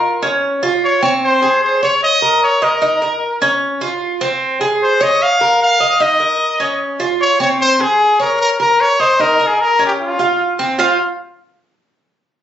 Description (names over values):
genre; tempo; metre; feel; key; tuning
latin; 150 BPM; 4/4; straight; F minor; A4 = 444 Hz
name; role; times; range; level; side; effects
bright trumpet; melody; 0.0-11.0 s; F4 to F5; -13 LUFS; left 1 dB; none
Cuban tres; arpeggios; 0.0-11.0 s; C4 to F5; -16 LUFS; right 2 dB; none
room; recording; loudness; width
moderate studio reverb, RT60 0.6 s; recorded on a phone in the room, club reverb, compression, nothing above 7.9 kHz; -12 LUFS; side -10 dB against mid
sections
0.0-10.8 A section; 10.8-12.4 B section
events
none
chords
0.4 Dbmaj7; 1.2 Abadd11/C; 2.0 Bbm; 2.8 Eb5; 3.6 Dbmaj7; 4.4 Abadd11/C; 5.2 Bbm; 6.0 Eb5; 6.8 Dbmaj7; 7.6 Bbm9/C; 8.4 Bbm; 9.2 Eb5; 10.0 Dbmaj7; 10.8 F5